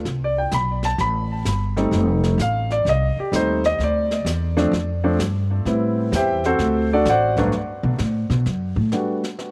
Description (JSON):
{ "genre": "jazz piano trio", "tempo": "128 BPM", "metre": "4/4", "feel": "swing 67% on 8ths", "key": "G major", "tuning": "A4 = 442 Hz", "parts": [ { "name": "upright bass", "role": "bass", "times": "0.0-8.9 s", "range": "F1 to B2", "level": "-24 LUFS", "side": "equal", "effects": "none" }, { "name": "jazz brush drum kit", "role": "drums", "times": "0.1-9.5 s", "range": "brushed snare drum, hi-hat, kick drum, snare drum", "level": "-35 LUFS", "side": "equal", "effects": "none" }, { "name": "warm grand piano", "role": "melody", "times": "0.2-9.2 s", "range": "G2 to B5", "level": "-23 LUFS", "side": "equal", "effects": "tape echo" } ], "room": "light reverb, small room ambience", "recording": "none", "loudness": "-21 LUFS", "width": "mono", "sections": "0.0-7.5 A section; 7.5-9.5 A section", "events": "grand piano solo 0.0-7.5; upright bass solo 7.5-9.5", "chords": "0.1 C5; 1.9 F7; 3.8 Dmadd9; 5.7 Am7; 6.6 D7; 7.5 Gmaj9 (rootless)", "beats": "| 0.05 0.52 0.98 1.45 | 1.92 2.39 2.85 3.32 | 3.79 4.25 4.72 5.19 | 5.65 6.12 6.59 7.05 | 7.52 7.99 8.46 8.92 | 9.39" }